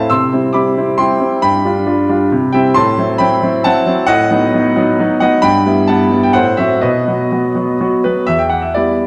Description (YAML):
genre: classical-period piano sonatina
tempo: 122-138 BPM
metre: 3/4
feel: rubato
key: E minor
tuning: A4 = 440 Hz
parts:
  - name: clear concert grand piano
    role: solo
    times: 0.0-9.1 s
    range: E2 to E6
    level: -13 LUFS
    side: equal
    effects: none
room: wet recital hall reverb, RT60 1.6 s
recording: none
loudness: -13 LUFS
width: mono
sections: 0.0-8.3 A section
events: none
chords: 0.1 C; 1.4 G7; 2.3 C; 2.8 F#m7b5/A; 4.1 B7/A; 5.4 Em/G; 6.4 F#dim/A; 6.8 B; 8.3 Em